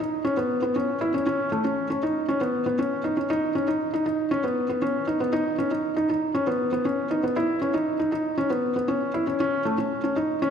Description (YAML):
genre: electronica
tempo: 118 BPM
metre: 4/4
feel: straight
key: C# minor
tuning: A4 = 440 Hz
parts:
  - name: felt-muted upright piano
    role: solo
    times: 0.0-10.5 s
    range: A3 to E4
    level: -23 LUFS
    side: equal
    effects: none
room: wet concert hall reverb, RT60 1.9 s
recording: none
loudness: -23 LUFS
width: side -7 dB against mid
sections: 0.0-10.5 A section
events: none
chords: none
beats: 0.24 0.75 | 1.26 1.77 2.28 2.79 | 3.29 3.80 4.31 4.82 | 5.33 5.84 6.35 6.86 | 7.36 7.87 8.38 8.89 | 9.40 9.90 10.41